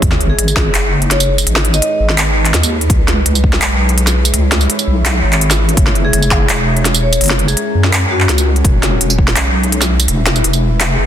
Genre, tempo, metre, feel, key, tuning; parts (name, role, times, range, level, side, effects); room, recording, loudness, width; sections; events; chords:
half-time drum and bass; 167 BPM; 4/4; half-time; G# minor; A4 = 441 Hz
deep dark ambient pad; sustained chords; 0.0-11.1 s; G#3 to F#5; -22 LUFS; right 1 dB; chorus, built-in reverb, sidechain pumping
deep soft wobble bass; bass; 0.0-11.1 s; E1 to F#2; -14 LUFS; equal; chorus
electronic kick drum; drums; 0.0-0.6, 2.9-3.5, 5.8-6.4, 8.6-9.3 s; -15 LUFS; equal; high-pass filter on kick, high-pass filter on room
industrial drum kit; drums; 0.0-10.9 s; handclaps, hi-hat, snare drum, tambourine; -15 LUFS; equal; soft clipping on snare
sub drop and swell; sound effects; 0.0-1.5, 10.9-11.1 s; -22 LUFS; equal
vibraphone with medium hard mallets; melody; 0.3-2.1, 6.0-8.5 s; F#4 to D#5; -22 LUFS; left 2 dB; dub echo
little or no reverb; dense, heavily limited modern master, high-pass filter; -10 LUFS; side -10 dB against mid
0.0-11.1 A section
drop 0.0-11.1; impact 0.0-1.5; swell 10.9
0.0 G#m; 2.9 C#m; 5.8 F#add9; 8.6 E